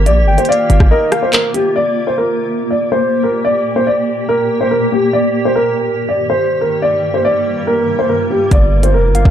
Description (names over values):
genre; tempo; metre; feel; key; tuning
hip hop, drill; 142 BPM; 4/4; half-time; G minor; A4 = 440 Hz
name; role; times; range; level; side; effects
granular cloud pad; sustained chords; 0.0-9.3 s; G2 to G4; -18 LUFS; equal; built-in reverb
distorted 808-style bass; bass; 0.0-0.9, 8.5-9.3 s; F1 to Bb1; -12 LUFS; equal; distortion
dark concert grand piano; melody; 0.1-9.3 s; G4 to D5; -14 LUFS; equal; tape echo
drill drum kit; drums; 0.1-1.6, 8.5-9.3 s; handclaps, hi-hat, kick drum, rim click; -13 LUFS; equal; none
soft octave-layered synth lead; second line; 0.3-1.3, 9.1-9.3 s; Eb5 to G5; -20 LUFS; left 3 dB; chorus, tape echo
room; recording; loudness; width
little or no reverb; dark, warm production, tape saturation; -12 LUFS; side -10 dB against mid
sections
0.0-1.8 A section; 1.8-9.3 A section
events
break 0.9-1.8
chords
0.1 Fsus4/G; 1.8 Gm; 5.1 Eb/G; 6.8 Fsus4/G; 8.5 Gm